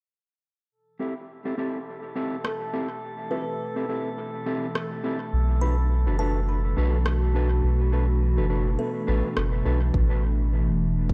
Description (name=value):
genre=ambient dub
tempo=104 BPM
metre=4/4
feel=swing 56% on 16ths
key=A dorian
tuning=A4 = 439 Hz
part: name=warbly tape-like pad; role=sustained chords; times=1.8-11.1 s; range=B2 to G4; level=-34 LUFS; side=equal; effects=chorus, built-in reverb, phaser
part: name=drifting glass-harmonics texture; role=texture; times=1.6-10.0 s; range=A4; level=-41 LUFS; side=equal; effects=chorus, built-in reverb
part: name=mellow electric guitar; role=stabs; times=1.0-9.8 s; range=C4 to B4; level=-34 LUFS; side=equal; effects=spring reverb, low-pass filter, dub echo
part: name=kalimba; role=arpeggios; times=2.4-10.6 s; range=B3 to B5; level=-38 LUFS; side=equal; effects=low-pass filter, dub echo
part: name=electronic rim click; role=drums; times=2.4-9.5 s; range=none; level=-35 LUFS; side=equal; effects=dub echo
part: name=soft dub sub bass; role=bass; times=5.3-11.1 s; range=E1 to B1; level=-25 LUFS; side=equal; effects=none
part: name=electronic kick drum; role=drums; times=9.9-11.1 s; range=none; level=-26 LUFS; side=equal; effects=overdrive
room=light reverb, digital ambience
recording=none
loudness=-26 LUFS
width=mono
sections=0.7-9.9 A section; 9.9-11.1 B section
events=filter sweep on ambient pad 0.7-9.9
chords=0.7 Am7; 5.3 Bm7; 9.9 A7(no3)